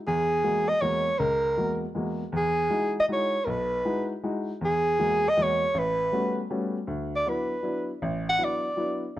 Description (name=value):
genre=jazz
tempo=158 BPM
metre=3/4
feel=swing 65% on 8ths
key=unclear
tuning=A4 = 440 Hz
part: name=breathy soprano saxophone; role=melody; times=0.1-9.0 s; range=G#4 to F#5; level=-24 LUFS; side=equal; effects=none
part: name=clear upright piano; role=accompaniment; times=0.1-9.2 s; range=A1 to F#4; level=-29 LUFS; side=left 1 dB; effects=none
room=light reverb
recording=dark, warm production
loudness=-24 LUFS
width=side -14 dB against mid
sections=0.0-6.9 A section; 6.9-9.2 B section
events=soprano saxophone solo 6.9-9.2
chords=0.1 F#add9/E; 2.3 Emaj9; 4.6 F#add9/E; 5.7 A13; 6.9 D69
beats=| 0.07 0.45 0.83 | 1.21 1.59 1.96 | 2.34 2.72 3.10 | 3.48 3.86 4.24 | 4.61 4.99 5.37 | 5.75 6.13 6.51 | 6.88 7.26 7.64 | 8.02 8.40 8.78 | 9.15